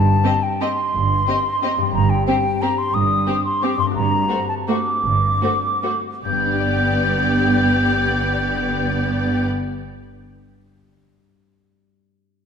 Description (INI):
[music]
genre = classical, orchestral ballroom waltz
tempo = 138-195 BPM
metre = 3/4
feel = rubato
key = unclear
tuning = A4 = 440 Hz
[part]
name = mellow concert flute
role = second line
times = 0.0-9.4 s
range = G5 to G6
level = -21 LUFS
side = left 1 dB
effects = none
[part]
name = concert harp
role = arpeggios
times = 0.0-10.3 s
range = G2 to D5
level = -28 LUFS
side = left 8 dB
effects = none
[part]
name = clear symphonic double bass section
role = bass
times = 0.0-9.4 s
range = G1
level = -25 LUFS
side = right 4 dB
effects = none
[part]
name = rich symphonic cello section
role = bass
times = 0.0-9.5 s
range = G2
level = -24 LUFS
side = right 3 dB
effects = none
[part]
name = rich symphonic violin section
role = melody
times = 0.2-9.5 s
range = C5 to Eb5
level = -31 LUFS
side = left 3 dB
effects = none
[part]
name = warm studio violin section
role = second line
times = 0.2-9.5 s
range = F#4 to G4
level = -29 LUFS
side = left 5 dB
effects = none
[part]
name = rich symphonic viola section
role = accompaniment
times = 0.2-9.4 s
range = A3 to C4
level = -24 LUFS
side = right 1 dB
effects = none
[sound]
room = moderate scoring stage reverb, RT60 1.9 s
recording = minimal, uncompressed stereo recording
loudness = -17 LUFS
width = side -7 dB against mid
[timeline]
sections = 0.0-6.2 A section; 6.2-8.7 B section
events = slowing down 3.4-6.2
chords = 0.0 Cm/G; 4.0 D7/G; 6.2 G